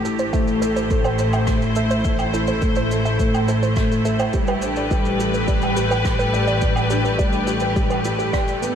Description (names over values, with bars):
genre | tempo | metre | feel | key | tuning
piano and strings electronica | 105 BPM | 4/4 | straight | A minor | A4 = 441 Hz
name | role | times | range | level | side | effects
rich symphonic string section | sustained chords | 0.0-8.8 s | A2 to C5 | -24 LUFS | left 2 dB | sidechain pumping
warbly dusty pluck | arpeggios | 0.0-8.4 s | G4 to E5 | -27 LUFS | right 4 dB | chorus, sidechain pumping, tape echo
felt-muted upright piano | riff | 0.0-8.8 s | G3 to G5 | -23 LUFS | left 1 dB | analog chorus, tape echo
clear studio double bass section | bass | 0.0-8.8 s | A1 | -24 LUFS | equal | tube saturation, sidechain pumping
shaker, woodblock and rim click | drums | 0.1-8.7 s | none | -31 LUFS | right 4 dB | none
electronic kick drum | drums | 0.3-8.4 s | none | -22 LUFS | equal | none
room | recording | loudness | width
moderate lush hall reverb, RT60 2.7 s | dreamy mix soaked in reverb | -17 LUFS | side -8 dB against mid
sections
0.0-8.8 A section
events
none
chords
0.0 Am; 4.3 G/A